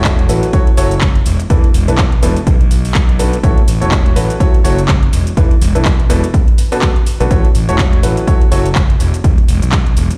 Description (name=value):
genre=piano house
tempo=124 BPM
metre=4/4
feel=swing 57% on 16ths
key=A major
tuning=A4 = 440 Hz
part: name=bright baby grand piano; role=riff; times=0.0-8.7 s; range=B2 to C#5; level=-21 LUFS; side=equal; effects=sidechain pumping, digital delay
part: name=fuzz fingered electric bass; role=bass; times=0.0-10.1 s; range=E1 to B1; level=-17 LUFS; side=equal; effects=overdrive, tube saturation, sidechain pumping
part: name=electronic kick drum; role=drums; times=0.0-9.8 s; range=none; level=-14 LUFS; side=equal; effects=none
part: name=garage drum kit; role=drums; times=0.0-10.2 s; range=handclaps, hi-hat, shaker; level=-24 LUFS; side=equal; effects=none
room=little or no reverb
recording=played on a big sound system in a bare room, stone room reverb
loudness=-12 LUFS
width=mono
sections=0.0-10.2 A section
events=none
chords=0.0 A6; 0.5 F#m7; 1.5 E7sus4; 2.5 Bm7; 3.4 A6; 4.4 F#m7; 5.4 E7sus4; 6.3 Bm7; 7.3 A6; 8.3 F#m7; 9.2 E5